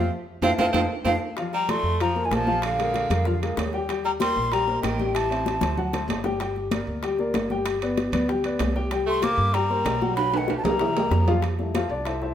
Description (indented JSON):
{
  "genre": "Afro-Cuban jazz",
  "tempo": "191 BPM",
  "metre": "4/4",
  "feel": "straight",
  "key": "Bb major",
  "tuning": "A4 = 439 Hz",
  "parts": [
    { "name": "breathy mellow jazz flute", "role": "melody", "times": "0.0-6.1, 9.1-11.3 s", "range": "F5 to D6", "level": "-26 LUFS", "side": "equal", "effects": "none" },
    { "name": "bright tenor saxophone", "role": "second line", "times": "0.0-5.8, 9.1-11.3 s", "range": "D3 to C4", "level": "-31 LUFS", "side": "right 4 dB", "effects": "none" },
    { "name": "warm baby grand piano", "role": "accompaniment", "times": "0.0-12.3 s", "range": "E3 to G5", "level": "-27 LUFS", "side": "left 3 dB", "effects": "none" },
    { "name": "upright bass", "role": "bass", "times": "0.0-12.3 s", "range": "G1 to G2", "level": "-28 LUFS", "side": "right 1 dB", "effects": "none" },
    { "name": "bongos", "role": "percussion", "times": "0.4-12.3 s", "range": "none", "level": "-35 LUFS", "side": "left 5 dB", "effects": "none" },
    { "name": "congas", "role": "percussion", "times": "0.4-12.3 s", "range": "none", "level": "-31 LUFS", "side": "left 3 dB", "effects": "none" },
    { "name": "timbales", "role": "percussion", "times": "0.4-12.2 s", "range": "none", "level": "-32 LUFS", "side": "right 6 dB", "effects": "none" }
  ],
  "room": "wet stone room reverb, RT60 1.4 s",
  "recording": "band playing live in one room",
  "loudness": "-22 LUFS",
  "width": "side -10 dB against mid",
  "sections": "0.0-1.4 A section; 1.4-11.4 B section",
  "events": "band accent 0.1-1.4; drum fill 0.4-1.4, 5.5-6.4, 10.2-11.4",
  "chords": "0.0 Fmaj7; 0.7 F7; 1.4 Bbmaj7; 2.6 Bb7; 3.9 Eb6; 5.1 Am7; 5.8 D7; 6.4 Gm; 7.7 G; 8.9 C5; 10.2 B5; 10.8 C7; 11.4 Fmaj9",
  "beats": "| 0.11 0.42 0.74 1.06 | 1.37 1.69 2.00 2.32 | 2.63 2.95 3.26 3.58 | 3.89 4.21 4.52 4.83 | 5.15 5.46 5.78 6.09 | 6.41 6.72 7.03 7.35 | 7.66 7.97 8.29 8.60 | 8.92 9.23 9.54 9.86 | 10.17 10.49 10.80 11.12 | 11.43 11.74 12.06"
}